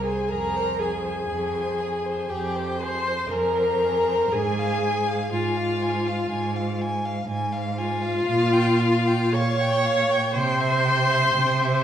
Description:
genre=classical, slow romantic movement for string quartet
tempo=60 BPM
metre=4/4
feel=rubato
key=F minor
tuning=A4 = 440 Hz
part: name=warm violin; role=melody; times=0.0-11.8 s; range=F5 to Db6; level=-30 LUFS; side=left 7 dB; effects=none
part: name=warm violin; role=second line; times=0.0-11.8 s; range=Ab4 to Ab5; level=-31 LUFS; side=left 2 dB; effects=none
part: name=rich viola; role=accompaniment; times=0.0-11.8 s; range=F4 to Db5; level=-23 LUFS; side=equal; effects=none
part: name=rich cello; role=bass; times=0.0-11.8 s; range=C2 to C3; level=-27 LUFS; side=right 3 dB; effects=none
room=wet recital hall reverb, RT60 1.3 s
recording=heard from further back in the room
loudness=-21 LUFS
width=side -10 dB against mid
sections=0.0-11.8 A section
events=none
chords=0.3 Fm; 4.3 Fm/Ab; 8.3 Gm7b5/Bb; 10.3 C

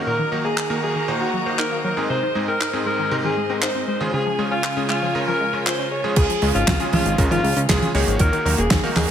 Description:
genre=italo disco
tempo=118 BPM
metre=4/4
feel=straight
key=Db major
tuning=A4 = 440 Hz
part: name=bright studio string section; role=sustained chords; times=0.0-9.1 s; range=Ab2 to Bb5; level=-28 LUFS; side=equal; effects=none
part: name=bright electric grand piano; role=stabs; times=0.0-9.1 s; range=Ab2 to Db5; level=-26 LUFS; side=right 2 dB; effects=tape echo
part: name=warm alto saxophone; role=melody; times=0.1-9.1 s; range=F4 to Db5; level=-23 LUFS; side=left 1 dB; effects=tape echo
part: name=analog pluck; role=arpeggios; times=0.1-9.0 s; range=Bb2 to F4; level=-28 LUFS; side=left 2 dB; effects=chorus, tape echo
part: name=damped 70s drum kit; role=drums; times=0.6-9.1 s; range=crash cymbal, handclaps, hi-hat, snare drum, toms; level=-23 LUFS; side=right 1 dB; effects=gated reverb
part: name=fat analog bass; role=bass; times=6.2-9.1 s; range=Eb1 to Eb2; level=-23 LUFS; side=equal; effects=none
part: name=electronic kick drum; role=drums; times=6.2-8.8 s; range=none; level=-20 LUFS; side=equal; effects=overdrive
room=moderate lush hall reverb, RT60 2.2 s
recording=none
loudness=-18 LUFS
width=side -9 dB against mid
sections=0.0-6.2 A section; 6.2-9.1 B section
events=none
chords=0.1 Ebm; 2.1 Ab; 4.1 Db; 8.2 Ebm

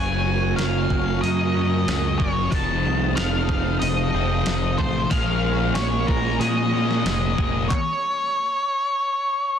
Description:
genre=rock, shoegaze and dream pop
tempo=92 BPM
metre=4/4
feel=straight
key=unclear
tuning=A4 = 440 Hz
part: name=octave-fuzz lead guitar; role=melody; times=0.0-9.6 s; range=Bb4 to A5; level=-25 LUFS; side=equal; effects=distortion, digital delay
part: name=hollow soft pad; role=sustained chords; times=0.0-7.7 s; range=Gb4 to Eb6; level=-33 LUFS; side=equal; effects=ensemble chorus
part: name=twelve-string electric guitar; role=arpeggios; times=0.0-7.7 s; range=Eb3 to Db4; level=-33 LUFS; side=right 12 dB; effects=analog chorus, digital delay
part: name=electric guitar through a small old amp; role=riff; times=0.0-7.7 s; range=F2 to Ab4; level=-29 LUFS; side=right 14 dB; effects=reverse reverb
part: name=thick fuzz guitar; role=riff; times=0.0-7.7 s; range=F2 to Bb3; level=-26 LUFS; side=left 10 dB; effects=distortion, analog chorus
part: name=growling fingered electric bass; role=bass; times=0.0-7.7 s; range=F1 to Bb2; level=-25 LUFS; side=right 1 dB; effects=overdrive
part: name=clean 12-bit digital drum machine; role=drums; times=0.6-7.9 s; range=handclaps, hi-hat, kick drum, snare drum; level=-26 LUFS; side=equal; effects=none
room=digital ambience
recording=dense, heavily limited modern master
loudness=-19 LUFS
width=side -8 dB against mid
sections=0.0-9.6 A section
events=none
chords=0.0 Gbadd9; 2.5 F7; 5.1 Bbm7; 7.7 N.C.

